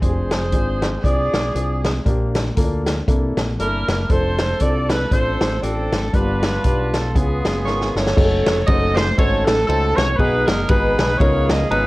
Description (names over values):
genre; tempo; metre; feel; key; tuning
uptempo gospel; 118 BPM; 4/4; swing 57% on 8ths; unclear; A4 = 437 Hz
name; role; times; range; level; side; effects
bright saxophone section; melody; 0.0-11.9 s; Cb4 to Eb5; -21 LUFS; right 1 dB; plate reverb
warm upright piano; accompaniment; 0.0-11.9 s; G2 to Bb5; -24 LUFS; left 2 dB; plate reverb
fingered electric bass; bass; 0.0-11.9 s; F1 to D2; -22 LUFS; equal; none
swinging big-band drum kit; drums; 0.0-11.8 s; crash cymbal, hi-hat, kick drum, ride cymbal, snare drum; -20 LUFS; equal; none
room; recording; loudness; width
light reverb, small room ambience; worn, warbling old tape, cassette tape, warbly pitch drift; -16 LUFS; side -20 dB against mid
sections
0.0-8.2 A section; 8.2-11.9 B section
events
drum fill 7.7-8.2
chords
0.0 Fm6; 2.1 Bb6; 3.1 C13; 4.1 F6; 6.1 G7; 7.2 Db7; 8.2 Gbm6; 10.2 Cb6; 11.2 Db13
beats
| 0.02 0.53 1.04 1.55 | 2.06 2.57 3.08 3.59 | 4.10 4.61 5.12 5.63 | 6.14 6.64 7.15 7.66 | 8.17 8.68 9.18 9.69 | 10.19 10.70 11.20 11.71